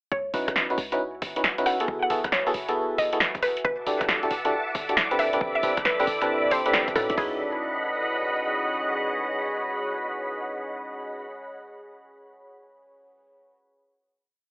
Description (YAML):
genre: UK garage, two-step garage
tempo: 136 BPM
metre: 4/4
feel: swing 65% on 16ths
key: C# minor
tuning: A4 = 438 Hz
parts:
  - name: mallet-like synth pluck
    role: melody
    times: 0.1-11.3 s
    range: G#4 to F#5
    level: -28 LUFS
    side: equal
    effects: chorus, digital delay
  - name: short 808-style bass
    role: bass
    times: 0.1-8.5 s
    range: D1 to A2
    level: -35 LUFS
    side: equal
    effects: none
  - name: punchy analog drum machine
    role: drums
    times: 0.1-7.3 s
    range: hi-hat, kick drum, toms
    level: -34 LUFS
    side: equal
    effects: none
  - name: deep dark ambient pad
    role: texture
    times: 0.9-11.5 s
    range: E4 to B5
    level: -33 LUFS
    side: equal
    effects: chorus, built-in reverb, sidechain pumping
  - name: FM electric piano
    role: stabs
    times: 0.3-11.3 s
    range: B3 to C5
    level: -28 LUFS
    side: equal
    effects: chorus, digital delay
  - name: punchy analog drum machine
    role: drums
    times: 0.3-7.2 s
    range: hi-hat, rim click, snare drum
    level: -26 LUFS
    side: equal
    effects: none
  - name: soft string machine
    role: sustained chords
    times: 3.6-11.3 s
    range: D#5 to D6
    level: -29 LUFS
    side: equal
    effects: ensemble chorus, sidechain pumping
room: moderate small room reverb, RT60 0.5 s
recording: telephone sound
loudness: -23 LUFS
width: side -29 dB against mid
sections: 0.1-7.2 drop; 7.2-10.7 final chord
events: drop 0.1-7.2; band accent 6.7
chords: 0.1 C#m11; 1.9 F#m11; 3.6 Em11; 5.2 Am11; 7.2 C#m11